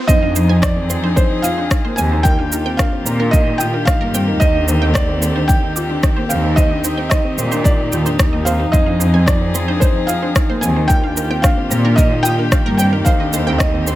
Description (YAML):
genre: piano and strings electronica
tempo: 111 BPM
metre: 4/4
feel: straight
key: unclear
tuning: A4 = 439 Hz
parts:
  - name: felt-muted upright piano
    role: melody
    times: 0.1-14.0 s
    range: C5 to Ab5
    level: -21 LUFS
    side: right 1 dB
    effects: tape echo
  - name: dark string quartet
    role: sustained chords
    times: 0.1-14.0 s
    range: D3 to Ab4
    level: -24 LUFS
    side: left 1 dB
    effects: sidechain pumping
  - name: wide unison pluck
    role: arpeggios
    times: 0.1-14.0 s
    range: Bb4 to Eb6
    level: -28 LUFS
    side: right 4 dB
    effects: sidechain pumping, tape echo
  - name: dark grand piano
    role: riff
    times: 0.1-14.0 s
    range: Bb3 to F4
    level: -22 LUFS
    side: left 2 dB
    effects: tape echo
  - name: warm chamber cello section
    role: bass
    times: 0.1-14.0 s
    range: Eb2 to Bb2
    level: -18 LUFS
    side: equal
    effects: sidechain pumping, high-pass filter
  - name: electronic kick drum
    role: drums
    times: 0.1-13.7 s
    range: none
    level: -15 LUFS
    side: equal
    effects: none
  - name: electronic shaker and rim click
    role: drums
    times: 0.1-14.0 s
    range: none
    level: -22 LUFS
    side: equal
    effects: high-pass filter on perc, high-pass filter on snare
room: light reverb, studio reverb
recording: none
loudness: -13 LUFS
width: side -15 dB against mid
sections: 0.1-14.0 A section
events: drop 0.1-14.0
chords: 0.1 Fm7; 2.3 Ebadd9; 8.7 Fm7; 10.9 Ebadd9